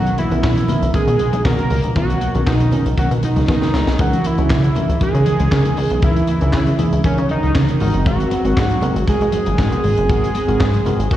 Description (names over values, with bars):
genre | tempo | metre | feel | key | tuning
early-eighties boogie funk | 118 BPM | 4/4 | straight | C# dorian | A4 = 440 Hz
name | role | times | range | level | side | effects
fat analog lead | melody | 0.0-11.2 s | C#4 to A#4 | -20 LUFS | right 1 dB | chorus, slapback echo, tape echo, plate reverb
mellow tine electric piano | accompaniment | 0.0-11.2 s | D#3 to A#4 | -23 LUFS | left 1 dB | overdrive, medium stereo tremolo, slapback echo, plate reverb
warm analog pad | sustained chords | 0.0-11.2 s | C#3 to D#5 | -28 LUFS | right 2 dB | none
plucky analog bass | bass | 0.0-11.2 s | F#1 to C#3 | -18 LUFS | equal | none
clean electric guitar | riff | 0.1-11.2 s | G#3 to C#4 | -29 LUFS | right 2 dB | analog chorus, slapback echo
tight funk drum kit | drums | 0.1-11.2 s | handclaps, hi-hat, kick drum, snare drum | -21 LUFS | equal | none
congas | percussion | 0.2-11.0 s | none | -25 LUFS | left 1 dB | none
room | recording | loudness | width
moderate club reverb, RT60 0.5 s | live gig heard through the venue's PA, cassette tape, recital hall reverb | -14 LUFS | side -12 dB against mid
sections
0.0-11.2 A section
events
drum fill 3.5-4.0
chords
0.0 Bmaj9; 4.0 C#m69; 7.8 G#9